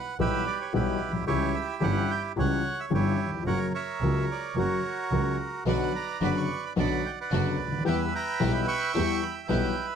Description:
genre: tango.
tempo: 110 BPM.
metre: 4/4.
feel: rubato.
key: B harmonic minor.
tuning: A4 = 440 Hz.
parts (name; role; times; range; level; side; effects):
bandoneon; melody; 0.0-10.0 s; E4 to C#6; -30 LUFS; right 5 dB; none.
warm grand piano; accompaniment; 0.2-9.7 s; F#1 to G4; -28 LUFS; left 4 dB; none.
rich double bass; bass; 0.2-9.7 s; F#1 to E2; -32 LUFS; right 3 dB; none.
rich studio string section; stabs; 5.7-9.7 s; B3 to G4; -36 LUFS; right 1 dB; none.
room: little or no reverb.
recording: close, detailed microphones.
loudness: -25 LUFS.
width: side -7 dB against mid.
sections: 0.0-10.0 A section.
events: none.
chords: 0.0 Em/B; 1.3 C#dim; 3.5 F#; 5.7 Bm; 7.9 Em.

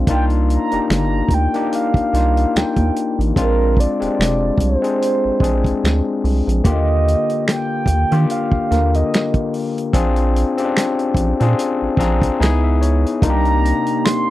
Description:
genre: R&B, neo-soul.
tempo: 73 BPM.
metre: 4/4.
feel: swing 56% on 16ths.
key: unclear.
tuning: A4 = 440 Hz.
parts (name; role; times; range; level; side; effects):
overdriven tine electric piano; accompaniment; 0.0-14.3 s; D3 to Bb5; -19 LUFS; left 4 dB; none.
rubbery square bass; bass; 0.0-13.7 s; F1 to Eb3; -17 LUFS; right 1 dB; none.
mellow horn-like synth lead; melody; 0.1-14.3 s; Bb4 to C6; -21 LUFS; right 3 dB; chorus.
warm soul drum kit; drums; 0.1-14.3 s; finger snaps, hi-hat, kick drum, snare drum; -18 LUFS; right 1 dB; none.
hollow soft pad; sustained chords; 13.2-14.3 s; C3 to G4; -26 LUFS; right 4 dB; chorus.
room: little or no reverb.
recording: dry, close 1970s-style studio recording.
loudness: -15 LUFS.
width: side -15 dB against mid.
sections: 0.0-6.6 A section; 6.6-14.3 B section.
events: tine electric piano fill 11.6-13.2.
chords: 0.1 Cm11; 3.4 Bb9; 6.6 Ebmaj9; 9.9 Bb7; 12.4 Dbm7; 13.2 Cm7.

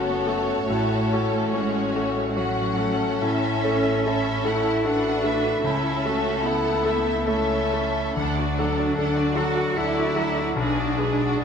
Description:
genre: classical, romantic movement for piano and orchestra.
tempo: 64-77 BPM.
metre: 3/4.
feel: rubato.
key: unclear.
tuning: A4 = 440 Hz.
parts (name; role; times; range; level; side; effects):
clear concert grand piano; melody; 0.0-11.4 s; B1 to A4; -24 LUFS; left 3 dB; none.
rich studio violin section; melody; 0.0-11.4 s; B4 to F#5; -32 LUFS; left 2 dB; none.
rich studio violin section; second line; 0.0-11.4 s; F#4 to B4; -31 LUFS; left 3 dB; none.
warm studio viola section; accompaniment; 0.0-11.4 s; C#4 to G#4; -31 LUFS; right 2 dB; none.
warm studio cello section; bass; 0.0-11.4 s; F#3 to F#4; -27 LUFS; right 3 dB; none.
warm studio double bass section; bass; 0.0-11.4 s; F#1 to D2; -32 LUFS; right 5 dB; none.
room: moderate scoring stage reverb, RT60 2.0 s.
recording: nothing above 10.5 kHz.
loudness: -21 LUFS.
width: side -7 dB against mid.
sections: 0.0-11.4 A section.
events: none.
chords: 0.0 F#m; 0.7 F#m/A; 3.2 A; 5.6 A/C#; 8.2 D; 10.6 G#m7b5/B.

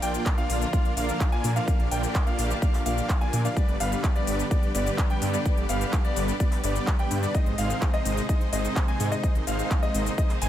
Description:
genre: EDM, festival progressive house.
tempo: 127 BPM.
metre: 4/4.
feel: straight.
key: unclear.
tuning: A4 = 440 Hz.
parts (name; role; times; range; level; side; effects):
warm studio string section; sustained chords; 0.0-10.5 s; C3 to G4; -36 LUFS; equal; sidechain pumping.
warm baby grand piano; arpeggios; 0.0-10.5 s; D5 to Ab5; -33 LUFS; left 2 dB; sidechain pumping, ping-pong delay.
dense compressed supersaw; riff; 0.0-10.5 s; G3 to Ab5; -30 LUFS; equal; cassette tape, sidechain pumping, ping-pong delay.
wide detuned saw bass; bass; 0.0-10.5 s; G1 to Bb2; -28 LUFS; equal; chorus, sidechain pumping.
big-room dance drum kit; drums; 0.0-10.5 s; handclaps, hi-hat, shaker; -34 LUFS; left 2 dB; overdrive.
electronic kick drum; drums; 0.3-10.3 s; none; -24 LUFS; equal; none.
reverse cymbal; sound effects; 10.3-10.5 s; none; -42 LUFS; right 7 dB; none.
room: digital ambience.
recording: none.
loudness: -23 LUFS.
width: side -12 dB against mid.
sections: 0.0-10.5 A section.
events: reverse cymbal 10.3.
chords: 0.0 Bb; 3.6 G; 7.3 Ab.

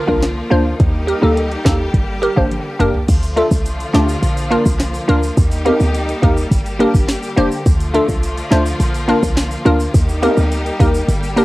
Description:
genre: dancehall.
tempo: 105 BPM.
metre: 4/4.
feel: straight.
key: unclear.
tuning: A4 = 440 Hz.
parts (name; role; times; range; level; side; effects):
clear studio string section; sustained chords; 0.0-11.4 s; D3 to G4; -24 LUFS; equal; cassette tape.
glassy wavetable pluck; accompaniment; 0.1-11.4 s; A3 to C5; -17 LUFS; equal; chorus, cassette tape.
short 808-style bass; bass; 0.1-11.4 s; F1 to Eb2; -17 LUFS; equal; none.
afro-pop drum kit; drums; 0.1-11.4 s; crash cymbal, handclaps, hi-hat, kick drum, rim click, snare drum, toms; -17 LUFS; equal; cassette tape.
tube shaker and timbales; percussion; 3.1-11.4 s; none; -28 LUFS; right 2 dB; none.
room: light reverb, digital ambience.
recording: home recording on cassette.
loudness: -13 LUFS.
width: side -18 dB against mid.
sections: 0.0-3.1 A section; 3.1-11.4 B section.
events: drum fill 2.5-3.1; kick muted 11.1-11.4.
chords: 0.0 Bb; 0.8 Eb; 1.9 Gm; 3.1 Dm; 4.2 Bb; 5.4 Eb; 6.5 Gm; 7.7 Dm; 8.8 Bb; 9.9 Eb.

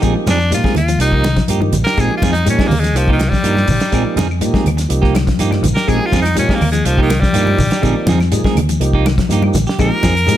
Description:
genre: afrobeat.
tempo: 123 BPM.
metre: 4/4.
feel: straight.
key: unclear.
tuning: A4 = 438 Hz.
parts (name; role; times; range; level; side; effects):
tonewheel organ; accompaniment; 0.0-10.4 s; F3 to Ab4; -22 LUFS; right 4 dB; slow rotary speaker.
semi-hollow electric guitar; arpeggios; 0.0-10.4 s; Eb3 to Ab3; -23 LUFS; left 9 dB; ensemble chorus.
clean electric guitar; stabs; 0.0-10.2 s; F3 to Ab4; -22 LUFS; right 6 dB; none.
fingered electric bass; bass; 0.0-10.4 s; Bb1 to Bb2; -17 LUFS; equal; none.
damped 70s drum kit; drums; 0.0-10.4 s; hi-hat, kick drum, snare drum; -19 LUFS; equal; none.
shekere; percussion; 0.0-10.4 s; none; -26 LUFS; left 2 dB; none.
raspy tenor saxophone; melody; 0.3-10.4 s; Eb3 to Bb4; -18 LUFS; left 1 dB; none.
congas; percussion; 0.3-10.4 s; none; -22 LUFS; right 3 dB; none.
claves; percussion; 3.9-10.3 s; none; -32 LUFS; left 4 dB; none.
room: small room ambience.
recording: none.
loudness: -12 LUFS.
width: side -12 dB against mid.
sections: 0.0-10.4 A section.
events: tenor saxophone solo 0.0-10.4.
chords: 0.0 Bb9sus4; 1.0 Cm7; 2.0 Bb9sus4; 3.0 Cm7; 3.9 Bb9sus4; 4.9 Cm7; 5.9 Bb9sus4; 6.9 Cm7; 7.8 Bb9sus4; 8.8 Cm7; 9.8 Bb9sus4.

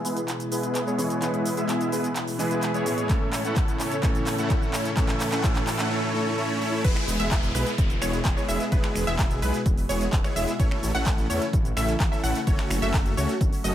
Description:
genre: EDM, festival progressive house.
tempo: 128 BPM.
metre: 4/4.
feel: straight.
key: E major.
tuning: A4 = 444 Hz.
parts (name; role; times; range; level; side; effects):
warm grand piano; accompaniment; 0.0-6.9 s; A2 to C#5; -30 LUFS; right 1 dB; sidechain pumping, dub echo.
lush unison pad; sustained chords; 0.0-13.7 s; B2 to C#5; -33 LUFS; left 1 dB; chorus, sidechain pumping.
supersaw chords; riff; 0.0-13.7 s; G#3 to F#5; -28 LUFS; equal; sidechain pumping, low-pass filter, dub echo.
big-room dance drum kit; drums; 0.0-13.7 s; cabasa, crash cymbal, finger snaps, handclaps, hi-hat; -32 LUFS; equal; none.
riser and downlifter; sound effects; 2.3-10.6 s; none; -37 LUFS; equal; none.
electronic kick drum; drums; 3.1-13.5 s; none; -24 LUFS; equal; none.
wide unison pluck; arpeggios; 6.8-13.7 s; B4 to F#5; -32 LUFS; equal; sidechain pumping, dub echo.
detuned saw bass; bass; 6.8-13.7 s; E1 to E2; -29 LUFS; equal; sidechain pumping.
room: light reverb, digital ambience.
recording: none.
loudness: -22 LUFS.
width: side -11 dB against mid.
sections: 0.0-6.8 A section; 6.8-13.7 B section.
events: build-up 0.0-6.8; drum fill 0.0-5.9; filter sweep on supersaw synth 0.0-6.8; drop 6.8-13.7.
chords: 0.0 E; 3.1 A; 6.8 E; 10.6 A; 12.5 F#m.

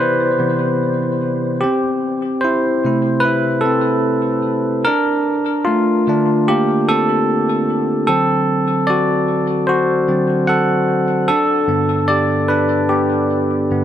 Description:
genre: pop.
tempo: 74 BPM.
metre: 4/4.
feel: straight.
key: C major.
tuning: A4 = 440 Hz.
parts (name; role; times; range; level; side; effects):
bell-like tine electric piano; solo; 0.0-13.8 s; G2 to F#5; -14 LUFS; equal; ping-pong delay.
room: moderate plate reverb, RT60 3.4 s.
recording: none.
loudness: -14 LUFS.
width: side -10 dB against mid.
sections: 0.0-1.6 A section; 1.6-13.8 A section.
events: tine electric piano solo 0.0-1.6, 1.6-13.8.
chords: 0.0 Cmaj7; 1.6 C6; 4.9 Bbmaj7; 8.1 D7; 11.3 Gadd9.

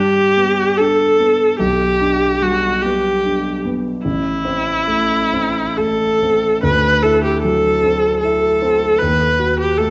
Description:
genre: classical, romantic duo for viola and grand piano.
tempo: 63-78 BPM.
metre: 3/4.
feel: rubato.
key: G major.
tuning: A4 = 440 Hz.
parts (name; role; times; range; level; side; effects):
clear viola; melody; 0.0-9.9 s; E4 to B4; -17 LUFS; equal; none.
dark concert grand piano; accompaniment; 0.0-9.9 s; A1 to F#4; -22 LUFS; equal; none.
room: wet recital hall reverb, RT60 1.4 s.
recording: nothing above 7.7 kHz.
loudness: -16 LUFS.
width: mono.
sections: 0.0-9.9 A section.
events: none.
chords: 0.0 G; 1.6 G/B; 4.0 Am; 6.6 D9; 9.0 B/D#.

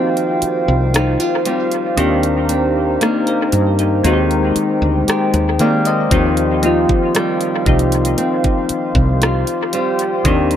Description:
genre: contemporary R&B.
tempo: 58 BPM.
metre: 4/4.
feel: straight.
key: Eb major.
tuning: A4 = 436 Hz.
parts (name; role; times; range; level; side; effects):
soft electric-piano-like synth keys; accompaniment; 0.0-10.6 s; Eb3 to F5; -18 LUFS; left 2 dB; chorus, dub echo.
hollow soft pad; sustained chords; 0.0-10.6 s; Ab3 to C6; -21 LUFS; right 2 dB; chorus.
flamenco guitar; arpeggios; 0.0-10.6 s; Eb3 to G4; -20 LUFS; left 1 dB; dub echo.
trap drum kit; drums; 0.2-10.6 s; hi-hat, kick drum, rim click; -21 LUFS; equal; dub echo.
woody fretless electric bass; bass; 0.4-10.6 s; C2 to Eb3; -18 LUFS; equal; none.
room: light reverb.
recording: echo-heavy mix.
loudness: -13 LUFS.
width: side -10 dB against mid.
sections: 0.0-10.6 A section.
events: break 0.0-6.1.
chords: 0.0 Eb69; 2.0 Cm7/Eb; 4.0 Abmaj9; 6.1 Eb69.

